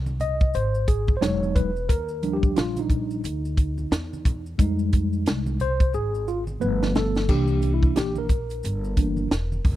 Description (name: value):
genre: hip hop, jazz-hop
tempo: 89 BPM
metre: 4/4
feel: swing 61% on 16ths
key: F dorian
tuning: A4 = 440 Hz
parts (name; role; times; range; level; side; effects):
- upright bass; bass; 0.0-9.8 s; E1 to F2; -27 LUFS; equal; none
- congas and maracas; percussion; 0.1-9.8 s; none; -36 LUFS; right 2 dB; none
- mellow tine electric piano; accompaniment; 0.2-9.8 s; E3 to Eb5; -26 LUFS; equal; medium stereo tremolo
- compact cocktail drum kit; drums; 0.2-9.8 s; crash cymbal, hi-hat, kick drum, snare drum; -21 LUFS; equal; none
room: small room ambience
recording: dry, close 1970s-style studio recording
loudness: -21 LUFS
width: side -14 dB against mid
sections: 0.0-9.8 A section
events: tine electric piano solo 0.0-9.8; drum fill 5.9-7.3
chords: 0.0 Fm7 (rootless); 1.2 Emaj9; 1.9 Ebmaj9; 4.6 Fm9; 6.6 G9; 7.3 C7